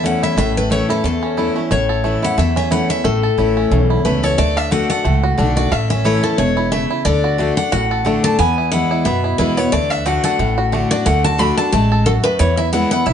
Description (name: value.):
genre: bluegrass.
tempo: 180 BPM.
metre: 4/4.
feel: swing 55% on 8ths.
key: A major.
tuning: A4 = 440 Hz.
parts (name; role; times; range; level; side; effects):
bluegrass banjo; melody; 0.0-13.1 s; A3 to A4; -23 LUFS; right 5 dB; plate reverb.
picked steel-string acoustic guitar; melody; 0.0-13.1 s; A4 to B5; -19 LUFS; left 3 dB; plate reverb.
picked steel-string acoustic guitar; accompaniment; 0.0-13.1 s; E2 to F#4; -19 LUFS; left 2 dB; none.
upright bass; bass; 0.0-13.1 s; E1 to F#2; -19 LUFS; right 1 dB; none.
room: moderate studio reverb, RT60 0.8 s.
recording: nothing above 10.5 kHz.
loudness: -14 LUFS.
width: side -8 dB against mid.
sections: 0.0-4.4 A section; 4.4-13.1 B section.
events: none.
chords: 0.0 A; 4.4 D; 5.7 A; 7.1 D; 8.4 E; 9.7 D; 12.4 E.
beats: 0.04 | 0.37 0.71 1.04 1.38 | 1.71 2.05 2.38 2.71 | 3.05 3.38 3.72 4.05 | 4.39 4.72 5.05 5.39 | 5.72 6.06 6.39 6.72 | 7.06 7.39 7.72 8.06 | 8.39 8.73 9.06 9.39 | 9.73 10.06 10.40 10.73 | 11.06 11.40 11.73 12.06 | 12.40 12.73 13.07.